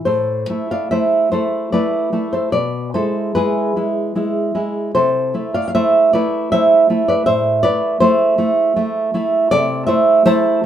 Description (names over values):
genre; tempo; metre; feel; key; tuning
romantic piece for solo classical guitar; 68-81 BPM; 3/4; rubato; A minor; A4 = 440 Hz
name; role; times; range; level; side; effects
nylon-string guitar; solo; 0.0-10.7 s; A2 to A5; -14 LUFS; right 1 dB; none
room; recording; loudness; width
wet small room reverb, RT60 0.5 s; minimal, uncompressed stereo recording; -14 LUFS; side -10 dB against mid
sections
0.1-10.7 A section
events
none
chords
0.1 Am; 2.5 E/B; 4.9 Am/C; 7.3 Am; 9.5 Am/C